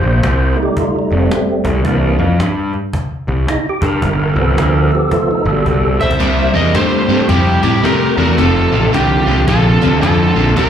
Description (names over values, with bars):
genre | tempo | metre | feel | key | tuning
blues rock power trio and southern rock | 110 BPM | 4/4 | swing 62% on 8ths | C mixolydian | A4 = 440 Hz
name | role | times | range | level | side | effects
percussive tonewheel organ | sustained chords | 0.0-10.7 s | B2 to C5 | -17 LUFS | right 2 dB | slow rotary speaker, overdrive, chorus vibrato
fuzz picked electric bass | bass | 0.0-10.7 s | F1 to C3 | -14 LUFS | equal | overdrive
cajon | drums | 0.0-10.7 s | none | -22 LUFS | equal | slapback echo
overdriven slide guitar | melody | 6.0-10.7 s | G4 to E5 | -17 LUFS | equal | slapback echo
biting lead guitar | second line | 6.0-10.7 s | E4 to C5 | -22 LUFS | right 5 dB | overdrive, slapback echo
crunchy overdriven guitar | riff | 6.2-10.7 s | F2 to A3 | -15 LUFS | left 1 dB | slapback echo
room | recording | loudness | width
light reverb | live gig heard through the venue's PA, club reverb | -11 LUFS | side -9 dB against mid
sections
0.0-6.2 A section; 6.2-10.7 B section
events
tonewheel organ solo 0.0-6.2; drum fill 5.7-6.2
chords
0.0 F7; 1.9 C7; 4.0 G7; 6.2 C7; 8.4 F7